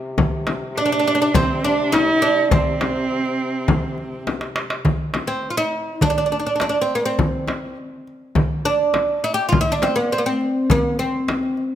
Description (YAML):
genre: Arabic maqam ensemble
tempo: 103 BPM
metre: 4/4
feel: straight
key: C maqam rast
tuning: A4 = 440 Hz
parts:
  - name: warm duduk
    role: drone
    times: 0.0-4.9 s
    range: C3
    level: -31 LUFS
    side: left 2 dB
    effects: none
  - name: darbuka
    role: percussion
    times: 0.2-11.6 s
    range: none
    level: -24 LUFS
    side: right 2 dB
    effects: none
  - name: frame drum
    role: percussion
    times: 0.2-11.4 s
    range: none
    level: -22 LUFS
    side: left 3 dB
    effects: none
  - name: oud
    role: melody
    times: 0.8-11.6 s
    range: Bb3+50c to G4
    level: -20 LUFS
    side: right 1 dB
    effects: none
  - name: rich cello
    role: second line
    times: 0.8-4.2 s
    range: C4 to E4-46c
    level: -21 LUFS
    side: right 3 dB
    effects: none
room: moderate recital hall reverb, RT60 1.6 s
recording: none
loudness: -18 LUFS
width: side -11 dB against mid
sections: 0.0-4.9 A section; 4.9-11.8 B section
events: drum fill 4.3-4.9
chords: none